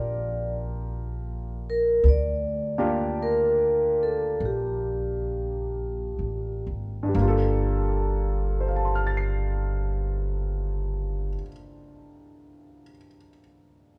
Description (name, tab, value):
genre	jazz ballad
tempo	41-57 BPM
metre	4/4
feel	swing 66% on 8ths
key	G minor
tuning	A4 = 441 Hz
part	vibraphone with medium mallets	melody	0.0-11.4 s	G4 to D5	-30 LUFS	equal	none
part	warm concert grand piano	accompaniment	0.0-14.0 s	G2 to C7	-33 LUFS	equal	none
part	upright bass	bass	0.0-11.4 s	G1 to D2	-30 LUFS	equal	none
room	moderate recital hall reverb, RT60 1.7 s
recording	recorded in a church or concert hall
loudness	-26 LUFS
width	mono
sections	0.0-7.1 A section; 7.1-12.9 B section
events	slowing down 0.0-7.1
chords	0.0 Gm7; 7.1 Gm9